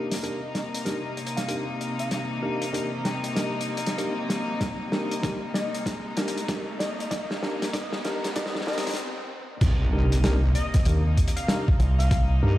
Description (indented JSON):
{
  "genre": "glitch hop",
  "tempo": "96 BPM",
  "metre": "4/4",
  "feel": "swing 63% on 16ths",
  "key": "C minor",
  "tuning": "A4 = 439 Hz",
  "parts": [
    { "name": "rich chamber string section", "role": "sustained chords", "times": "0.0-12.6 s", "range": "C3 to Eb4", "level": "-32 LUFS", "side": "left 1 dB", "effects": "sidechain pumping" },
    { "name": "mellow tine electric piano", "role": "stabs", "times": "0.0-12.6 s", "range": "D4 to Bb4", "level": "-33 LUFS", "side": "equal", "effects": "sidechain pumping, dub echo" },
    { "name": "riser and impact", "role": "sound effects", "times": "2.6-12.1 s", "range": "none", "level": "-36 LUFS", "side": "equal", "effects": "none" },
    { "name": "warm soul drum kit", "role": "drums", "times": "0.1-12.3 s", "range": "crash cymbal, hi-hat, snare drum", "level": "-31 LUFS", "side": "left 1 dB", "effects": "none" },
    { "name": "plucky unison lead", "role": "melody", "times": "0.5-12.2 s", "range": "Eb5 to G5", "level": "-36 LUFS", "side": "left 1 dB", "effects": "analog chorus, dub echo" },
    { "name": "electronic kick drum", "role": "drums", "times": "4.6-12.3 s", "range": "none", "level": "-23 LUFS", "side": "equal", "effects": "overdrive" },
    { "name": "wobble bass", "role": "bass", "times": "9.6-12.6 s", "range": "C2 to G2", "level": "-21 LUFS", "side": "equal", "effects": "chorus, overdrive" },
    { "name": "growling fingered electric bass", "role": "bass", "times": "10.9-12.4 s", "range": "C2 to Eb2", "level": "-21 LUFS", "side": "equal", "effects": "overdrive" }
  ],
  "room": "light reverb, small room ambience",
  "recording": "played on a big sound system in a bare room, stone room reverb, high-pass filter",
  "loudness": "-24 LUFS",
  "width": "side -15 dB against mid",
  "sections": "0.0-9.6 A section; 9.6-12.6 B section",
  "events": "build-up 0.0-9.6; drum fill 0.0-9.0; filter sweep on digital synth lead 0.0-9.6; riser 2.6-9.0; stop 9.0-9.6; drop 9.6-12.6; impact 9.6-12.1",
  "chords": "0.0 Cm7",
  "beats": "0.24 0.86 1.49 | 2.11 2.74 3.36 3.99 | 4.61 5.24 5.86 6.49 | 7.11 7.74 8.36 8.99 | 9.61 10.24 10.86 11.49 | 12.11"
}